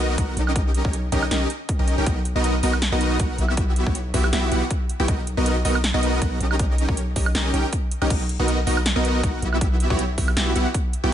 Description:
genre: future bass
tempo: 159 BPM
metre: 4/4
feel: swing 54% on 16ths, half-time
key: B major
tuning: A4 = 440 Hz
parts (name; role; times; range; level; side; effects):
- dense compressed supersaw; riff; 0.0-11.1 s; B3 to G5; -24 LUFS; equal; sidechain pumping, dub echo
- long sustained 808-style bass; bass; 0.0-11.1 s; B1; -24 LUFS; equal; sidechain pumping
- big-room dance drum kit; drums; 0.2-11.0 s; crash cymbal, hi-hat, snare drum, woodblock; -27 LUFS; right 2 dB; none
- electronic kick drum; drums; 0.2-10.8 s; none; -24 LUFS; equal; overdrive
room: light reverb, digital ambience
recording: nothing above 11.0 kHz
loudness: -19 LUFS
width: side -10 dB against mid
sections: 0.0-11.1 A section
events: none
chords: 0.0 Bmaj7; 0.6 D#7/B; 2.1 Bmaj7; 3.6 Emadd9/B; 5.1 Bmaj7; 6.6 D#7/B; 8.1 Bmaj7; 9.6 Emadd9/B

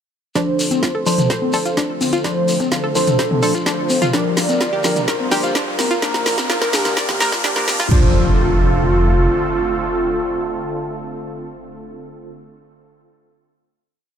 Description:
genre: progressive house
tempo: 127 BPM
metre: 4/4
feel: straight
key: F major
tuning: A4 = 440 Hz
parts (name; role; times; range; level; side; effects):
- warm velvety synth lead; melody; 0.4-12.3 s; F4 to D5; -23 LUFS; equal; chorus, cassette tape, sidechain pumping, dub echo
- filtered supersaw swell; sustained chords; 0.4-12.3 s; D3 to Bb4; -26 LUFS; right 1 dB; sidechain pumping, low-pass filter
- analog pluck; arpeggios; 0.4-8.1 s; D4 to D5; -24 LUFS; equal; chorus, vintage 12-bit sampler grit, sidechain pumping, dub echo
- deep mellow chord stab; stabs; 0.4-12.3 s; F3 to C5; -22 LUFS; left 1 dB; chorus, sidechain pumping, dub echo
- dark detuned saw bass; bass; 0.4-9.3 s; F1 to Bb1; -22 LUFS; right 1 dB; sidechain pumping, high-pass filter
- deep house drum kit; drums; 0.4-8.0 s; crash cymbal, kick drum; -21 LUFS; right 1 dB; high-pass filter on kick, high-pass filter on cymbals
- deep house drum kit; drums; 0.4-7.9 s; hi-hat, snare drum; -23 LUFS; equal; none
- shekere; percussion; 0.4-7.9 s; none; -28 LUFS; left 2 dB; none
- riser and impact; sound effects; 3.2-12.3 s; none; -24 LUFS; right 1 dB; none
- electronic congas and toms; percussion; 0.7-7.9 s; none; -22 LUFS; left 3 dB; sidechain pumping on perc, sidechain pumping on toms
room: light reverb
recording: high-pass filter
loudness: -15 LUFS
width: side -8 dB against mid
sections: 0.4-7.9 build; 7.9-11.7 final chord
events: build-up 0.4-7.9; drum fill 0.4-7.9; filter sweep on synth stab 0.4-7.9; filter sweep on supersaw synth 0.4-7.9; filter sweep 0.4-7.9; riser 3.2-7.9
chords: 0.4 F6; 4.1 Gm7; 6.0 Bb; 7.9 F6

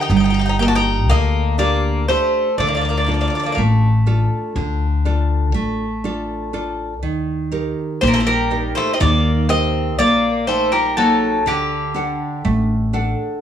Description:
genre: greek folk, Greek bouzouki band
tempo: 122 BPM (eighths)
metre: 9/8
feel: straight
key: unclear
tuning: A4 = 439 Hz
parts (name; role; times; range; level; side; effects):
- Greek bouzouki; melody; 0.0-13.4 s; G4 to A5; -19 LUFS; equal; plate reverb
- Greek bouzouki; second line; 0.0-13.4 s; D3 to F#4; -24 LUFS; left 4 dB; none
- nylon-string guitar; accompaniment; 0.0-13.4 s; D3 to G5; -21 LUFS; right 2 dB; none
- upright bass; bass; 0.1-13.1 s; G1 to Eb2; -20 LUFS; left 1 dB; none
room: moderate studio reverb, RT60 0.6 s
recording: studio ambience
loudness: -16 LUFS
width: side -9 dB against mid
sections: 0.0-13.4 A section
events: none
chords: 0.0 Gm; 2.6 Dm; 7.0 Eb; 11.5 D

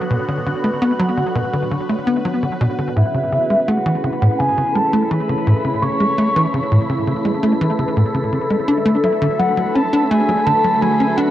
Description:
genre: ambient, sequencer-driven space music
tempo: 84 BPM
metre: 4/4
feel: straight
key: A major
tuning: A4 = 440 Hz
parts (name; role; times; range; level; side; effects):
- phased analog pad; sustained chords; 0.0-11.3 s; C#3 to B4; -21 LUFS; equal; phaser, chorus
- wind-like tuned noise texture; texture; 0.0-11.3 s; F#4 to B5; -29 LUFS; equal; built-in reverb
- tight sequencer bass; riff; 0.1-11.3 s; A2 to D4; -18 LUFS; equal; wide subtle chorus, analog delay
- soft octave-layered synth lead; melody; 3.0-11.3 s; E5 to C#6; -19 LUFS; equal; chorus, phaser, cassette tape, analog delay
room: wet booth ambience, RT60 0.2 s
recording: home recording on cassette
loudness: -15 LUFS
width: side -12 dB against mid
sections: 0.0-11.3 A section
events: none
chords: 0.0 Bm; 3.0 A; 8.7 D

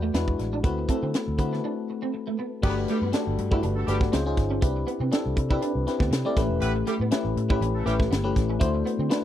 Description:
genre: polished 1980s jazz-funk pop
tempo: 120 BPM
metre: 4/4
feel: swing 54% on 16ths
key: unclear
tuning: A4 = 440 Hz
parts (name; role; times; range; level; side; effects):
- FM electric piano; accompaniment; 0.0-9.2 s; G#3 to G5; -27 LUFS; left 4 dB; lush chorus
- electric guitar at the edge of break-up; riff; 0.0-9.2 s; A3 to E4; -32 LUFS; right 6 dB; ensemble chorus
- vintage muted fingered electric bass; bass; 0.0-9.1 s; E1 to D3; -28 LUFS; right 1 dB; none
- tight funk drum kit; drums; 0.1-9.2 s; crash cymbal, hi-hat, kick drum, snare drum; -26 LUFS; equal; none
- clear horn section; second line; 2.6-7.9 s; G3 to B4; -33 LUFS; right 1 dB; none
room: small room ambience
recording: dry, close 1970s-style studio recording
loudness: -23 LUFS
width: side -11 dB against mid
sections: 0.0-2.6 A section; 2.6-9.2 B section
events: break 1.6-2.6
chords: 0.1 E7; 0.6 D13; 2.6 Gmaj7; 4.1 C#maj7; 4.6 Cmaj7; 6.4 A9; 8.6 D13

